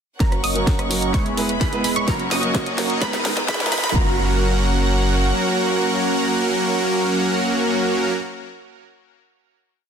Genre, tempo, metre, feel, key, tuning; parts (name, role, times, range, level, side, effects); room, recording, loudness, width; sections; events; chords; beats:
EDM, festival progressive house; 128 BPM; 4/4; straight; F# mixolydian; A4 = 440 Hz
dark grand piano; accompaniment; 0.2-8.1 s; G#2 to B4; -27 LUFS; right 4 dB; sidechain pumping, ping-pong delay
warm studio string section; sustained chords; 0.2-8.1 s; B3 to D#6; -28 LUFS; equal; sidechain pumping
wide unison pluck; arpeggios; 0.2-8.1 s; A#5 to D#6; -27 LUFS; right 1 dB; sidechain pumping, ping-pong delay
supersaw chords; riff; 0.2-8.1 s; F#3 to D#5; -21 LUFS; equal; sidechain pumping, low-pass filter, ping-pong delay
saturated sub bass; bass; 0.2-5.3 s; E1 to G#2; -24 LUFS; equal; sidechain pumping
electronic kick drum; drums; 0.2-4.0 s; -21 LUFS; equal
house drum kit; drums; 0.2-4.0 s; hi-hat, rim click, snare drum; -25 LUFS; equal
riser; sound effects; 1.6-4.0 s; -32 LUFS; equal
moderate digital room reverb, RT60 1.1 s; dense, heavily limited modern master, high-pass filter; -17 LUFS; side -7 dB against mid
0.2-4.0 build; 4.0-7.7 final chord
build-up 0.2-4.0; drum fill 0.2-4.0; filter sweep on supersaw synth 0.2-4.0; filter sweep 0.2-4.0
0.2 F#; 1.1 E; 2.1 F#; 3.0 G#madd9; 4.0 F#
| 0.20 0.67 1.14 1.61 | 2.08 2.55 3.02 3.48 | 3.95 4.42 4.89 5.36 | 5.83 6.30 6.77 7.24